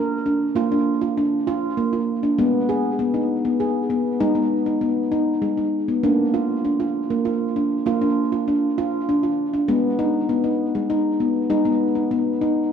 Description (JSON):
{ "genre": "world meditative, meditative tuned percussion", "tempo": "66 BPM (dotted quarters)", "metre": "6/8", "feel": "straight", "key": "unclear", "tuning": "A4 = 435 Hz", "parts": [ { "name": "handpan", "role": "solo", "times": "0.0-12.7 s", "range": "Ab3 to Bb4", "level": "-19 LUFS", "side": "equal", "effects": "diffuse ambient delay" } ], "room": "wet echo chamber reverb, RT60 1.3 s, small room ambience", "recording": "dark, warm production", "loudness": "-19 LUFS", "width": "side -7 dB against mid", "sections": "0.0-6.0 A section; 6.0-12.7 B section", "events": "none", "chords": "0.0 Bb; 2.4 Abm; 6.0 Bb; 9.7 Abm" }